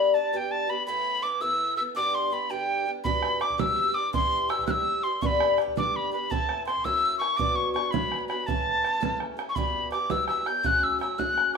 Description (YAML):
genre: celtic folk, Celtic jig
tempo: 110 BPM (dotted quarters)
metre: 6/8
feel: straight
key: B minor from 7.4 s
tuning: A4 = 440 Hz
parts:
  - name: mellow tin whistle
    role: melody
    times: 0.0-11.6 s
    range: G5 to G6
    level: -25 LUFS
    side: equal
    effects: none
  - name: picked swing-style acoustic guitar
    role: accompaniment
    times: 0.0-11.6 s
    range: E2 to C#5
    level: -30 LUFS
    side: left 2 dB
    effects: none
  - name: bodhran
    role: percussion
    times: 3.0-11.5 s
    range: none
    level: -31 LUFS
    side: right 4 dB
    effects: none
room: wet studio reverb, RT60 0.8 s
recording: band playing live in one room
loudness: -24 LUFS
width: side -5 dB against mid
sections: 0.0-7.4 A section; 7.4-11.6 B section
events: none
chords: 0.0 G; 0.9 Asus2; 2.0 G; 3.0 Em7; 4.1 C; 5.2 G; 6.3 Am; 6.8 F#7; 7.4 Bmadd9; 8.5 A/C#; 9.6 Em; 10.6 F#m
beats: 0.32 | 0.87 1.41 | 1.95 2.50 | 3.04 3.58 | 4.12 4.67 | 5.21 5.75 | 6.30 6.84 | 7.38 7.93 | 8.47 9.01 | 9.56 10.10 | 10.64 11.19